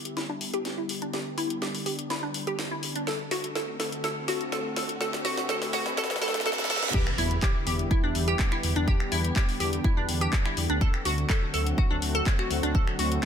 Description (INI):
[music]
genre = progressive house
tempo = 124 BPM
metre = 4/4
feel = straight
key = E minor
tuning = A4 = 441 Hz
[part]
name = lush unison pad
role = sustained chords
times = 0.0-13.3 s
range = D3 to B4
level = -34 LUFS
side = left 1 dB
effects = chorus, sidechain pumping
[part]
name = riser, reverse cymbal and impact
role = sound effects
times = 1.4-8.9 s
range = none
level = -36 LUFS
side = right 2 dB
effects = none
[part]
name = house drum kit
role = drums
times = 0.1-13.2 s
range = crash cymbal, finger snaps, handclaps, hi-hat, snare drum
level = -32 LUFS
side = left 1 dB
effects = high-pass filter on hats, high-pass filter on snare, high-pass filter on cymbals, high-pass filter on room
[part]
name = glassy wavetable pluck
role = arpeggios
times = 0.2-13.0 s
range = D4 to A4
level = -30 LUFS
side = equal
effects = chorus, phaser, sidechain pumping, ping-pong delay
[part]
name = electronic kick drum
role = drums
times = 6.9-12.8 s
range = none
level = -25 LUFS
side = equal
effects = none
[part]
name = dark detuned saw bass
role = bass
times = 7.2-13.2 s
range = D2 to E2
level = -29 LUFS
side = equal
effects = sidechain pumping
[sound]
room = light reverb, digital ambience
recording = high-pass filter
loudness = -25 LUFS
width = side -8 dB against mid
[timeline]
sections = 0.0-6.9 A section; 6.9-13.3 B section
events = build-up 0.0-6.9; drum fill 0.0-6.9; filter sweep on synth arpeggio sound 0.0-6.9; filter sweep on analog synth pad 0.0-6.9; filter sweep 0.0-6.9; riser 1.4-6.9; reverse cymbal 6.0-6.9; drop 6.9-13.3; impact 6.9-8.9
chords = 0.0 Em7; 3.1 D7; 6.9 Em7; 10.8 D7